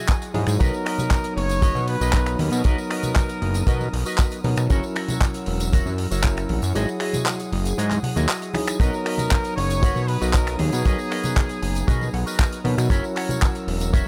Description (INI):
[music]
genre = nu-disco, nu disco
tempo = 117 BPM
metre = 4/4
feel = straight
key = B major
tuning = A4 = 438 Hz
[part]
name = tine electric piano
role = accompaniment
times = 0.0-14.1 s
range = F#3 to A#5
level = -31 LUFS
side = equal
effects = sidechain pumping
[part]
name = rich chamber string section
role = sustained chords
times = 0.0-14.1 s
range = B3 to E6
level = -40 LUFS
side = equal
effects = none
[part]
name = electric guitar with an envelope filter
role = riff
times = 0.0-14.1 s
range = F#4 to G#5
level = -35 LUFS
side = equal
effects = analog chorus
[part]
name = damped 70s drum kit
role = drums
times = 0.1-14.0 s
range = finger snaps, handclaps, hi-hat, tambourine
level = -32 LUFS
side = equal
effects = none
[part]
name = kick drum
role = drums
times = 0.1-14.0 s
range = none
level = -22 LUFS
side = equal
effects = none
[part]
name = tambourine and congas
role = percussion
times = 0.1-14.0 s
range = none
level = -36 LUFS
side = equal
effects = none
[part]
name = fat analog bass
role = bass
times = 0.3-14.0 s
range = E1 to B2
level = -26 LUFS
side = equal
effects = sidechain pumping
[part]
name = mellow trumpet section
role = melody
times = 0.6-4.4, 8.8-12.6 s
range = G#4 to C#5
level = -31 LUFS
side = equal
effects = digital delay
[sound]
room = small room reverb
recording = none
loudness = -22 LUFS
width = mono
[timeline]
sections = 0.0-14.1 A section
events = clean electric guitar fill 0.0-0.6, 7.8-8.8, 11.4-12.9; kick drops out 6.8-8.8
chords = 0.0 Emaj9; 0.6 Bmaj7; 4.7 F#7; 6.8 Emaj9; 8.8 Bmaj7; 12.9 F#7